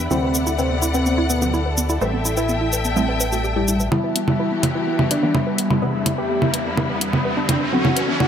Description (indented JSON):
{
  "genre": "melodic techno",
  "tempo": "126 BPM",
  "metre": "4/4",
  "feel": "straight",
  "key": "E minor",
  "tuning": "A4 = 441 Hz",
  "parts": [
    { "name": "warm symphonic string section", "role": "sustained chords", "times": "0.0-8.3 s", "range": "E2 to G5", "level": "-27 LUFS", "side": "left 3 dB", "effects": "none" },
    { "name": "woody wave-folded pluck", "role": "arpeggios", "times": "0.0-8.3 s", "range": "B3 to B4", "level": "-27 LUFS", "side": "equal", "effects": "chorus, digital delay" },
    { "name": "filtered dub chord stab", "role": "stabs", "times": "0.0-7.8 s", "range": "C3 to C4", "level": "-26 LUFS", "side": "right 1 dB", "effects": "phaser, digital delay" },
    { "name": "fat analog bass", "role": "bass", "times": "0.0-3.9 s", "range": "A1 to D2", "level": "-24 LUFS", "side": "equal", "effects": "none" },
    { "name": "ethereal airy pad", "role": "texture", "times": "0.0-8.3 s", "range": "E3 to B5", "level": "-27 LUFS", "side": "left 2 dB", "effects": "ensemble chorus, built-in reverb" },
    { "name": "wide unison lead", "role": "melody", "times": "0.1-8.3 s", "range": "G3 to G4", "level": "-24 LUFS", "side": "equal", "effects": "tape echo" },
    { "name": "electronic shaker, congas and hi-hat", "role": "drums", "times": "0.1-8.3 s", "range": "none", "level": "-22 LUFS", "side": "right 2 dB", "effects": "none" },
    { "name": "riser", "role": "sound effects", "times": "5.4-8.3 s", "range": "none", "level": "-26 LUFS", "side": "equal", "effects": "none" }
  ],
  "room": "moderate digital room reverb, RT60 1.4 s",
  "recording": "none",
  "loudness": "-18 LUFS",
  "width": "side -8 dB against mid",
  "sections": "0.0-3.9 A section; 3.9-8.3 B section",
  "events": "build-up 3.9-8.3; filter sweep on synth pluck 3.9-8.3; riser 5.4-8.3",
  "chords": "0.1 D7; 2.0 Am7; 3.9 Em; 5.8 Cmaj7/E; 7.7 D",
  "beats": "| 0.11 0.58 1.06 1.54 | 2.01 2.49 2.96 3.44 | 3.92 4.39 4.87 5.35 | 5.82 6.30 6.78 7.25 | 7.73 8.20"
}